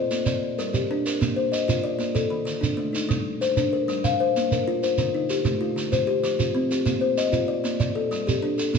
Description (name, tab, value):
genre	southern african traditional, mbira-style interlocking cycle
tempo	127 BPM (dotted quarters)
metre	12/8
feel	straight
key	Bb major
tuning	A4 = 440 Hz
part	kalimba	arpeggios	0.0-8.8 s	D3 to F5	-23 LUFS	left 3 dB	none
part	shekere	percussion	0.1-8.8 s	none	-28 LUFS	right 5 dB	none
room	wet stone room reverb, RT60 1.4 s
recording	band playing live in one room, nothing above 10.3 kHz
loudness	-22 LUFS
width	side -6 dB against mid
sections	0.0-1.2 A section; 1.2-8.8 B section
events	none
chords	0.3 Gm; 1.2 Bb; 2.2 D5; 3.1 Gm; 4.0 Bb5; 5.0 Dm; 5.9 F5; 6.9 Bb; 7.8 G5